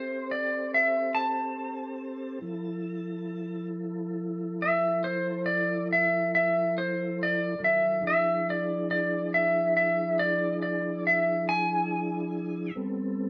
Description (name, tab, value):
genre	blues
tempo	46 BPM (dotted quarters)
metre	12/8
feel	straight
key	unclear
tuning	A4 = 445 Hz
part	clean lap steel guitar	melody	0.0-12.7 s	C5 to A5	-28 LUFS	equal	none
part	mellow tonewheel organ	sustained chords	0.0-13.3 s	D#3 to C5	-34 LUFS	equal	chorus vibrato, slow rotary speaker
room	moderate studio reverb, RT60 1.0 s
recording	band playing live in one room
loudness	-28 LUFS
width	mono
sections	0.0-13.3 A section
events	electric slide guitar solo 0.0-13.3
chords	0.0 Am7; 2.4 Fmaj7; 7.6 E7b9; 12.8 Am9